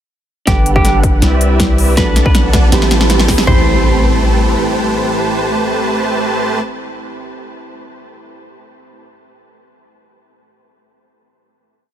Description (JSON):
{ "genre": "future bass", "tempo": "160 BPM", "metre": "4/4", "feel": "half-time", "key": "A dorian", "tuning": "A4 = 436 Hz", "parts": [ { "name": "semi-hollow electric guitar", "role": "melody", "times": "0.5-6.6 s", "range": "G4 to C5", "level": "-22 LUFS", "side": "equal", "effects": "sidechain pumping, tape echo" }, { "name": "glassy digital keys", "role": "accompaniment", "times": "0.5-9.0 s", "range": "C4 to B5", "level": "-22 LUFS", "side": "right 4 dB", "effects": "chorus, sidechain pumping, tape echo" }, { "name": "airy breathy pad", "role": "sustained chords", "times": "0.5-6.6 s", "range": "A2 to F#5", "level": "-26 LUFS", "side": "left 3 dB", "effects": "none" }, { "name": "dense compressed supersaw", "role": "riff", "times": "0.5-6.6 s", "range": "G3 to A5", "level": "-18 LUFS", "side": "right 1 dB", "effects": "sidechain pumping, low-pass filter, tape echo" }, { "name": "long sustained 808-style bass", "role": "bass", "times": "0.5-4.6 s", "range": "G1 to C2", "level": "-14 LUFS", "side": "equal", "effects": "sidechain pumping" }, { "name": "big-room dance drum kit", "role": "drums", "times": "0.5-3.5 s", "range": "hi-hat, snare drum", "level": "-18 LUFS", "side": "equal", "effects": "overdrive" }, { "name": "electronic kick drum", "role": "drums", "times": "0.5-3.6 s", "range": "none", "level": "-14 LUFS", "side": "equal", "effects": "overdrive" }, { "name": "riser and impact", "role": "sound effects", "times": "2.4-6.6 s", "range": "none", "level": "-25 LUFS", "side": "equal", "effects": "none" } ], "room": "light reverb", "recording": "none", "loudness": "-10 LUFS", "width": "side -10 dB against mid", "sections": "0.5-3.5 build; 3.5-6.5 final chord", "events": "build-up 0.5-3.5; drum fill 0.5-3.5; filter sweep on supersaw synth 0.5-3.5", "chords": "0.5 Gmaj7; 1.2 Cmaj7; 2.0 Bm7; 2.7 Am7" }